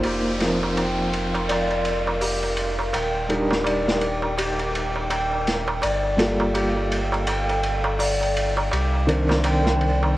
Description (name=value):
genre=trip hop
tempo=83 BPM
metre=4/4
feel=swing 60% on 16ths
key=unclear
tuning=A4 = 439 Hz
part: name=felt-muted upright piano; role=accompaniment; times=0.0-10.2 s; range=Eb3 to C5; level=-26 LUFS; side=equal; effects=tremolo, low-pass filter, tape echo
part: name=warbly tape-like pad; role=sustained chords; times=0.0-10.2 s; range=A4 to D6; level=-29 LUFS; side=right 1 dB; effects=chorus, built-in reverb
part: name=Celtic harp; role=arpeggios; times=0.0-10.2 s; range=G4 to G5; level=-28 LUFS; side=left 1 dB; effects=low-pass filter, tape echo
part: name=crunchy breakbeat drum kit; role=drums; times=0.0-10.0 s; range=hi-hat, ride cymbal, snare drum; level=-27 LUFS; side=equal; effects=high-pass filter on kick, high-pass filter on cymbals, high-pass filter on hats, high-pass filter on snare, high-pass filter on room
part: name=darbuka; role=percussion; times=0.0-10.1 s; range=none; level=-30 LUFS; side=right 2 dB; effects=none
part: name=downlifter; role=sound effects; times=0.0-5.8 s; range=none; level=-36 LUFS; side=equal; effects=none
part: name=warm sub bass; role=bass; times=0.1-10.2 s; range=Eb1 to C2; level=-27 LUFS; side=equal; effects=tube saturation
room=light reverb, studio reverb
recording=worn, warbling old tape, cassette tape, vinyl crackle, warbly pitch drift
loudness=-20 LUFS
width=side -16 dB against mid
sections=0.0-10.2 A section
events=none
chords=0.0 F7sus4; 2.9 Ebmaj7; 5.8 Gm9; 8.7 Cm9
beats=| 0.05 0.77 1.49 2.22 | 2.94 3.66 4.38 5.11 | 5.83 6.55 7.28 8.00 | 8.72 9.45 10.17